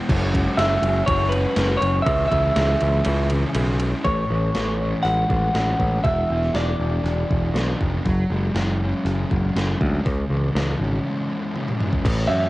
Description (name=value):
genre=indie rock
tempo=120 BPM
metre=4/4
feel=straight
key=A major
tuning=A4 = 440 Hz
part: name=fuzz guitar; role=riff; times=0.0-12.5 s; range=A2 to G#4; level=-25 LUFS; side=equal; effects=distortion, cassette tape
part: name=modern bright picked electric bass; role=bass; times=0.1-12.5 s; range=E1 to F#2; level=-22 LUFS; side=equal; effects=none
part: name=gated 80s digital drum machine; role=drums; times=0.1-12.5 s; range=crash cymbal, hi-hat, kick drum, ride cymbal, snare drum, toms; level=-26 LUFS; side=equal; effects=gated reverb, gated reverb snare, overdrive, cassette tape
part: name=clean electric guitar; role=melody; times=0.6-7.8, 12.3-12.5 s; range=B4 to F#5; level=-23 LUFS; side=equal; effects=none
room=little or no reverb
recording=home recording on cassette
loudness=-19 LUFS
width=side -18 dB against mid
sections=0.0-4.1 A section; 4.1-12.1 B section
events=break 3.1-4.1, 11.1-12.1; drum fill 11.6-12.1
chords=0.1 F#sus2; 2.1 C#m; 4.1 Amaj7; 6.1 E5; 8.1 F#sus2; 10.1 C#m